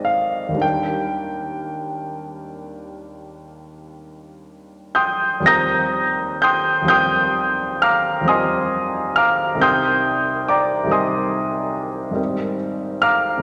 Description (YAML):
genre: classical, impressionist solo piano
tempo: 35-49 BPM (dotted quarters)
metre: 9/8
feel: rubato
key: Eb major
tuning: A4 = 440 Hz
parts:
  - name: warm concert grand piano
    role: solo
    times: 0.0-13.4 s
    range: Ab1 to Bb6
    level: -20 LUFS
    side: equal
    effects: none
room: wet scoring stage reverb, RT60 2.2 s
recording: none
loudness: -19 LUFS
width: mono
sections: 0.0-5.5 A section; 5.5-13.4 A section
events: none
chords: 0.0 Abmaj7; 0.6 Ebmaj7; 5.5 Eb69; 9.6 Cm7; 12.2 Abmaj9